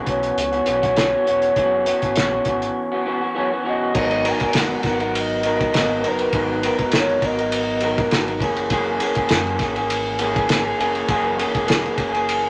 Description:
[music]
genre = indie pop, bedroom pop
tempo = 101 BPM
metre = 4/4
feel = swing 55% on 16ths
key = G# minor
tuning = A4 = 441 Hz
[part]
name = electric guitar through a small old amp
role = accompaniment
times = 0.0-12.5 s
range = F#2 to A#4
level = -24 LUFS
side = equal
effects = vibrato effect
[part]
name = hollow clarinet-like synth lead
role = melody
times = 0.1-8.1 s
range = B4 to G#5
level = -24 LUFS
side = equal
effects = chorus
[part]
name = sub bass with octave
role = bass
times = 0.1-12.5 s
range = E1 to F#2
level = -37 LUFS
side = equal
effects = none
[part]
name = cloth-damped thuddy drum kit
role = drums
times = 0.1-12.4 s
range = crash cymbal, hi-hat, kick drum, ride cymbal, snare drum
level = -25 LUFS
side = equal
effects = none
[sound]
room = moderate studio ambience, RT60 0.4 s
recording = none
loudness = -20 LUFS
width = mono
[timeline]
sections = 0.0-4.0 A section; 4.0-12.5 B section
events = break 2.8-4.0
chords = 0.0 F#7sus4; 4.0 G#m9; 8.4 F#9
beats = 0.38 0.97 | 1.57 2.16 2.76 3.35 | 3.95 4.54 5.14 5.74 | 6.33 6.92 7.52 8.12 | 8.71 9.30 9.90 10.49 | 11.09 11.69 12.28

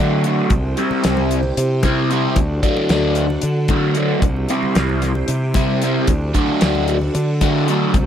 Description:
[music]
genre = psychedelic rock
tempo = 226 BPM (eighths)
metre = 7/8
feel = straight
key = D mixolydian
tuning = A4 = 441 Hz
[part]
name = string machine, full ensemble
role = sustained chords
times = 0.0-8.1 s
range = D4 to G5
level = -26 LUFS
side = right 3 dB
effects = phaser, ensemble chorus
[part]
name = crunchy overdriven guitar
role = riff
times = 0.0-8.0 s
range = C3 to E4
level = -19 LUFS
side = equal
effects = phaser
[part]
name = fuzz fingered electric bass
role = bass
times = 0.0-8.1 s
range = C2 to D3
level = -20 LUFS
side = equal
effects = overdrive
[part]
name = damped 70s drum kit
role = drums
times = 0.2-8.1 s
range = hi-hat, kick drum, snare drum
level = -20 LUFS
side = equal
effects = none
[part]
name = congas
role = percussion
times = 0.5-8.1 s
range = none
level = -27 LUFS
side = left 5 dB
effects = none
[sound]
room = light reverb, small room ambience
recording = none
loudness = -15 LUFS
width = side -9 dB against mid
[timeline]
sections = 0.0-8.1 A section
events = none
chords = 0.0 D; 0.5 C; 2.4 D; 4.2 C; 6.1 D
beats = 0.24 | 0.51 0.78 1.04 1.31 1.57 1.84 2.11 | 2.37 2.64 2.90 3.17 3.44 3.70 3.97 | 4.23 4.50 4.76 5.03 5.29 5.56 5.83 | 6.09 6.36 6.62 6.89 7.15 7.42 7.69 | 7.95

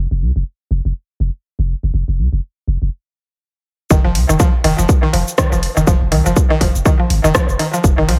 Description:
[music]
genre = minimal techno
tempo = 122 BPM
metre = 4/4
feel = swing 58% on 16ths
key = F minor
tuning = A4 = 440 Hz
[part]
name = punchy sub bass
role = bass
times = 0.0-8.2 s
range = F1 to C2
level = -19 LUFS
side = equal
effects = sidechain pumping
[part]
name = mallet-like synth pluck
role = riff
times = 3.9-8.2 s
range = Eb3 to F3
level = -20 LUFS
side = equal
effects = chorus, cassette tape, sidechain pumping, analog delay
[part]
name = electronic kick drum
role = drums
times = 3.9-8.0 s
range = none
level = -16 LUFS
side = equal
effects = overdrive
[part]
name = house drum kit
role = drums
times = 3.9-8.2 s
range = cabasa, hi-hat, rim click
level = -23 LUFS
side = equal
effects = overdrive
[sound]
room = light reverb, digital ambience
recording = echo-heavy mix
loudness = -16 LUFS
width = mono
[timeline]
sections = 0.0-3.9 A section; 3.9-8.2 B section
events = stop 2.9-3.9; drop 3.9-8.2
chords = 0.0 N.C.; 3.9 F7(no3)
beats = 0.46 0.95 1.45 | 1.94 2.43 2.92 3.41 | 3.90 4.40 4.89 5.38 | 5.87 6.36 6.86 7.35 | 7.84

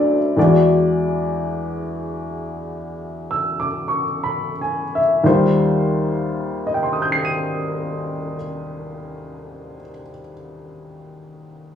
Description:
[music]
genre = jazz ballad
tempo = 42-56 BPM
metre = 4/4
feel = swing 69% on 8ths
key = unclear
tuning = A4 = 441 Hz
[part]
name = warm upright piano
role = solo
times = 0.0-11.8 s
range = D2 to Eb7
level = -19 LUFS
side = left 1 dB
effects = none
[sound]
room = wet large studio reverb, RT60 0.8 s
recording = studio reverb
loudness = -18 LUFS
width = side -8 dB against mid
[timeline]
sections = 0.4-5.2 A section; 5.2-10.9 B section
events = slowing down 0.0-5.2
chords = 0.4 E7; 5.2 Eb6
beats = | 0.36 1.46 2.62 3.86 | 5.22 6.64 8.06 9.48

